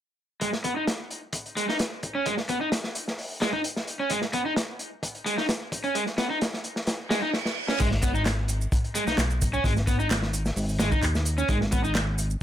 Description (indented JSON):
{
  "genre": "breakbeat, breaks",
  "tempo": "130 BPM",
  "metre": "4/4",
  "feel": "straight",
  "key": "G# minor",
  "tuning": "A4 = 440 Hz",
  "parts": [
    { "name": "raw garage guitar", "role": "riff", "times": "0.4-11.9 s", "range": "G#3 to D#4", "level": "-29 LUFS", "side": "right 1 dB", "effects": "overdrive, low-pass filter, dub echo" },
    { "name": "crunchy breakbeat drum kit", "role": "drums", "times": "0.4-12.3 s", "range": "crash cymbal, hi-hat, kick drum, snare drum", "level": "-28 LUFS", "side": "equal", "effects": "high-pass filter on kick, high-pass filter on hats, high-pass filter on cymbals, high-pass filter on snare, high-pass filter on room" },
    { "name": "reverse cymbal", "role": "sound effects", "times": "7.1-7.8 s", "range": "none", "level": "-34 LUFS", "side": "right 5 dB", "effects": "none" },
    { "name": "fat analog bass", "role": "bass", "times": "7.8-12.4 s", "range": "G#1 to D#2", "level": "-27 LUFS", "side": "equal", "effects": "none" },
    { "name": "electronic shaker and handclaps", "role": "drums", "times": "7.8-12.4 s", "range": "none", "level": "-33 LUFS", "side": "right 2 dB", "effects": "none" }
  ],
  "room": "light reverb",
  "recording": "none",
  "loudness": "-24 LUFS",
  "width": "side -11 dB against mid",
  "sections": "0.4-7.8 A section; 7.8-12.4 B section",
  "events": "reverse cymbal 7.1-7.8; drum fill 7.3-7.8",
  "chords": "0.4 G#m",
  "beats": "| 0.41 0.87 1.34 1.80 | 2.26 2.72 3.18 3.64 | 4.11 4.57 5.03 5.49 | 5.95 6.41 6.87 7.34 | 7.80 8.26 8.72 9.18 | 9.64 10.11 10.57 11.03 | 11.49 11.95"
}